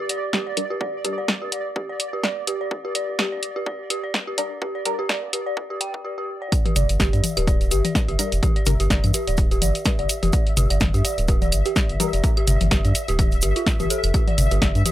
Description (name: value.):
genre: minimal techno.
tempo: 126 BPM.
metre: 4/4.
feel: swing 56% on 16ths.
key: G dorian.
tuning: A4 = 439 Hz.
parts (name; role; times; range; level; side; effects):
round analog bass; bass; 0.0-14.8 s; D1 to G2; -21 LUFS; equal; sidechain pumping, high-pass filter.
pulsing gated texture; texture; 0.0-14.9 s; D5 to E5; -34 LUFS; right 1 dB; chorus, built-in reverb, sidechain pumping.
dark detuned synth bell; riff; 0.1-14.9 s; F4 to G5; -27 LUFS; equal; chorus, phaser, sidechain pumping, analog delay.
punchy analog drum machine; drums; 0.1-14.9 s; hi-hat, snare drum; -24 LUFS; equal; none.
electronic kick drum; drums; 0.3-14.7 s; none; -22 LUFS; equal; high-pass filter on kick.
filtered dub chord stab; stabs; 0.6-1.2, 4.4-5.0, 8.2-8.8, 12.0-12.1 s; G3 to Bb4; -30 LUFS; left 3 dB; phaser, wide subtle chorus, analog delay.
cabasa; percussion; 6.5-14.9 s; none; -32 LUFS; right 3 dB; none.
electronic claves and toms; percussion; 6.5-14.9 s; none; -28 LUFS; left 3 dB; overdrive.
room: little or no reverb.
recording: dry, gritty hardware recording, high-pass filter.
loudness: -19 LUFS.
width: side -14 dB against mid.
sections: 0.0-6.5 A section; 6.5-14.9 B section.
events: build-up 0.0-6.5; drop 6.5-14.9.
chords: 0.0 G5.